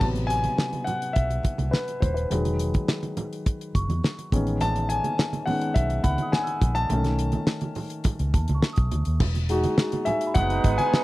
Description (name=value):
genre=lush 1970s-style soul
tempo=104 BPM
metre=4/4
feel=straight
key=E major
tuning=A4 = 444 Hz
part: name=warm grand piano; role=accompaniment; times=0.0-11.0 s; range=C3 to A5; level=-27 LUFS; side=left 2 dB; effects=none
part: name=vintage muted fingered electric bass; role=bass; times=0.0-10.8 s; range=D#1 to E2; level=-26 LUFS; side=equal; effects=none
part: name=damped 70s drum kit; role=drums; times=0.0-11.0 s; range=crash cymbal, hi-hat, kick drum, snare drum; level=-24 LUFS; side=equal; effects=none
part: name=congas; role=percussion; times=0.0-11.0 s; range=none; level=-33 LUFS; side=right 4 dB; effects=none
part: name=celesta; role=texture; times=0.3-11.0 s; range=D#5 to E6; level=-37 LUFS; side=right 3 dB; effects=none
part: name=warm horn section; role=stabs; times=10.4-11.0 s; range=G#3 to D#4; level=-26 LUFS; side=right 6 dB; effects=none
room=little or no reverb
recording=dry, close 1970s-style studio recording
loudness=-22 LUFS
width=side -18 dB against mid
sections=0.0-9.2 A section; 9.2-11.0 B section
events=grand piano solo 0.0-9.2, 9.2-11.0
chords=0.0 Am6; 2.3 Emaj9; 4.3 Amaj9#11; 6.9 B7; 9.2 Emaj7